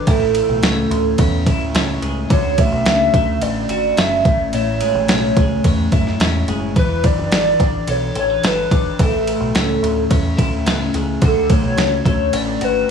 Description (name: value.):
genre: indie pop, bedroom pop.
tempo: 108 BPM.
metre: 4/4.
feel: straight.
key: A major.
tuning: A4 = 441 Hz.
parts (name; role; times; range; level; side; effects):
warbly nostalgic lead; melody; 0.0-12.9 s; A4 to E5; -19 LUFS; right 1 dB; wide subtle chorus, tape echo.
twelve-string electric guitar; accompaniment; 0.0-12.9 s; A2 to B4; -20 LUFS; left 3 dB; wide subtle chorus, warbly pitch drift.
deep dub picked electric bass; bass; 0.1-12.8 s; E1 to F#2; -23 LUFS; right 1 dB; none.
boom bap sampler-style drum kit; drums; 0.1-12.7 s; kick drum, ride cymbal, snare drum; -18 LUFS; right 1 dB; overdrive.
room: light reverb, digital ambience.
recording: small room ambience.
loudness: -14 LUFS.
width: side -7 dB against mid.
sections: 0.0-12.9 A section.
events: none.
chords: 0.1 Amaj7; 2.3 Dmaj7; 4.3 Amaj7; 6.8 E7sus4; 9.0 Amaj7; 11.2 Dmaj7.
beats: | 0.07 0.63 1.19 1.75 | 2.30 2.86 3.42 3.97 | 4.53 5.09 5.64 6.20 | 6.76 7.31 7.87 8.43 | 8.98 9.54 10.10 10.66 | 11.21 11.77 12.33 12.89.